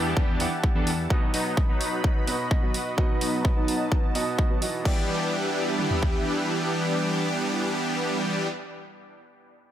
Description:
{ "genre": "EDM, festival progressive house", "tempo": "128 BPM", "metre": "4/4", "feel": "straight", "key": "E minor", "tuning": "A4 = 440 Hz", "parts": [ { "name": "clear baby grand piano", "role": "accompaniment", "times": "0.0-9.7 s", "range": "B2 to F#5", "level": "-33 LUFS", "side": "right 3 dB", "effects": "sidechain pumping, dub echo" }, { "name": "lush unison pad", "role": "sustained chords", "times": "0.0-8.5 s", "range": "D4 to B5", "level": "-35 LUFS", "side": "left 1 dB", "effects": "chorus, sidechain pumping" }, { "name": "supersaw chords", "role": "riff", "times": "0.0-8.5 s", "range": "E3 to A4", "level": "-27 LUFS", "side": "equal", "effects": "lush chorus, sidechain pumping, low-pass filter, dub echo" }, { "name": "fat analog bass", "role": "bass", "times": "0.0-1.1 s", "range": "E2", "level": "-30 LUFS", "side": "left 2 dB", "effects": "sidechain pumping" }, { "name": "big-room dance drum kit", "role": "drums", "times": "0.2-6.1 s", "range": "kick drum, toms", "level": "-24 LUFS", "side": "equal", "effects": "overdrive" }, { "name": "big-room dance drum kit", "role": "drums", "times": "0.4-4.9 s", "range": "crash cymbal, hi-hat", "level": "-34 LUFS", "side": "right 1 dB", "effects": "overdrive" } ], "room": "light reverb, digital ambience", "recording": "none", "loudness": "-23 LUFS", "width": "side -11 dB against mid", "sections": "0.0-4.9 A section; 4.9-8.6 B section", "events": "filter sweep on supersaw synth 0.0-4.9", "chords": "0.0 Em7; 1.1 B; 4.9 Em7" }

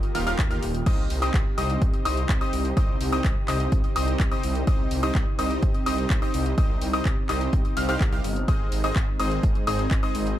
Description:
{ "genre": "EDM, festival progressive house", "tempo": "126 BPM", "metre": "4/4", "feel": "straight", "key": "C minor", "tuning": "A4 = 442 Hz", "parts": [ { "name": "lush unison pad", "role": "sustained chords", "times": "0.0-10.4 s", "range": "C3 to G4", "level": "-32 LUFS", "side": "left 1 dB", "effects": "chorus, sidechain pumping" }, { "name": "warm baby grand piano", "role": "arpeggios", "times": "0.0-10.4 s", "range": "Eb6 to F6", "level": "-31 LUFS", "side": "left 4 dB", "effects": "sidechain pumping, tape echo" }, { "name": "supersaw stab", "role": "riff", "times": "0.0-10.4 s", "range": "C4 to F5", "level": "-31 LUFS", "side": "right 2 dB", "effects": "sidechain pumping, tape echo" }, { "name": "house drum kit", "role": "drums", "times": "0.0-10.4 s", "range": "crash cymbal, handclaps, hi-hat", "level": "-35 LUFS", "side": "left 1 dB", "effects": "none" }, { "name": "wide detuned saw bass", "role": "bass", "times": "0.1-10.3 s", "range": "Eb1 to Eb2", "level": "-28 LUFS", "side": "equal", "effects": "chorus, sidechain pumping" }, { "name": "electronic kick drum", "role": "drums", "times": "0.4-10.0 s", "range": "none", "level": "-24 LUFS", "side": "equal", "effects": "none" } ], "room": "digital ambience", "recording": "none", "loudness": "-21 LUFS", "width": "side -12 dB against mid", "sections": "0.0-10.4 A section", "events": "none", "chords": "0.0 Ebadd9; 0.9 Cm; 8.5 Ab" }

